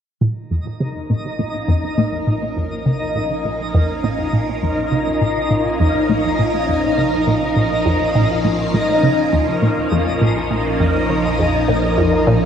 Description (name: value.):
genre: ambient, sequencer-driven space music.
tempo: 102 BPM.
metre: 4/4.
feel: straight.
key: Bb minor.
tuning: A4 = 437 Hz.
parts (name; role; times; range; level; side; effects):
phased string machine; sustained chords; 0.2-12.5 s; Bb2 to F5; -22 LUFS; equal; ensemble chorus, phaser.
resonant blip pluck; riff; 0.2-12.4 s; Eb2 to Db3; -19 LUFS; equal; phaser, tape echo.
warm sub bass; bass; 0.2-12.5 s; Bb1; -31 LUFS; equal; none.
twinkling granular texture; texture; 0.9-12.5 s; Eb4 to Eb5; -20 LUFS; equal; built-in reverb.
room: wet plate reverb, RT60 3.4 s.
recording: dreamy mix soaked in reverb.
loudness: -16 LUFS.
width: side -8 dB against mid.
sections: 0.2-12.5 A section.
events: fade-in on string machine 0.2-12.5; fade-in on sub bass 0.2-12.5; filter sweep on synth arpeggio sound 0.2-12.5.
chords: 0.2 Bbm.